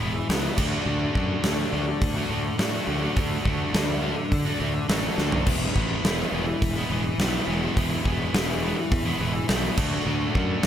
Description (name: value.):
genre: quiet-loud alternative rock.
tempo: 104 BPM.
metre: 4/4.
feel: straight.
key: unclear.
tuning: A4 = 440 Hz.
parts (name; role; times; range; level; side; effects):
distorted electric guitar; riff; 0.0-10.7 s; D3 to F#4; -27 LUFS; left 1 dB; distortion.
fuzz fingered electric bass; bass; 0.0-10.7 s; E1 to D3; -28 LUFS; equal; overdrive.
huge arena drum kit; drums; 0.3-10.7 s; crash cymbal, hi-hat, kick drum, snare drum, toms; -26 LUFS; equal; none.
room: little or no reverb.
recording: none.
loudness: -22 LUFS.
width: side -10 dB against mid.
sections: 0.0-5.5 A section; 5.5-10.7 A section.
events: drum fill 5.2.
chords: 0.0 E; 0.6 D; 5.5 E; 9.8 D.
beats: 0.29 | 0.86 1.44 2.02 2.59 | 3.17 3.74 4.32 4.89 | 5.47 6.04 6.62 7.19 | 7.77 8.34 8.91 9.49 | 10.06 10.64.